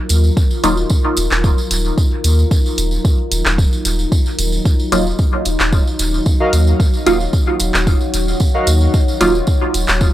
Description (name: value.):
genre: dub techno.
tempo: 112 BPM.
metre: 4/4.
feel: straight.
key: Eb minor.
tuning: A4 = 440 Hz.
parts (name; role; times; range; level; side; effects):
deep dark ambient pad; sustained chords; 0.0-10.1 s; Gb3 to Db5; -22 LUFS; left 2 dB; chorus, built-in reverb, sidechain pumping.
soft dub sub bass; bass; 0.1-10.1 s; Eb1 to Eb2; -16 LUFS; equal; transformer saturation, sidechain pumping.
deep house drum kit; drums; 0.1-10.0 s; handclaps, hi-hat; -18 LUFS; equal; dub echo.
tambourine; percussion; 0.1-10.1 s; none; -26 LUFS; right 3 dB; none.
electronic kick drum; drums; 0.4-10.1 s; none; -14 LUFS; equal; none.
filtered dub chord stab; stabs; 0.6-0.8, 4.9-9.3 s; Gb3 to F4; -18 LUFS; right 1 dB; phaser, sidechain pumping, dub echo.
warbly lo-fi synth keys; riff; 6.4-8.7 s; Gb4 to F5; -21 LUFS; equal; chorus, sidechain pumping, dub echo.
room: digital ambience.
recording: dry, gritty hardware recording.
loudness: -13 LUFS.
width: side -14 dB against mid.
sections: 0.0-10.1 A section.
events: none.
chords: 0.0 Ebmadd9.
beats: | 0.37 0.90 1.44 1.98 | 2.51 3.05 3.58 4.12 | 4.65 5.19 5.72 6.26 | 6.80 7.33 7.87 8.40 | 8.94 9.47 10.01.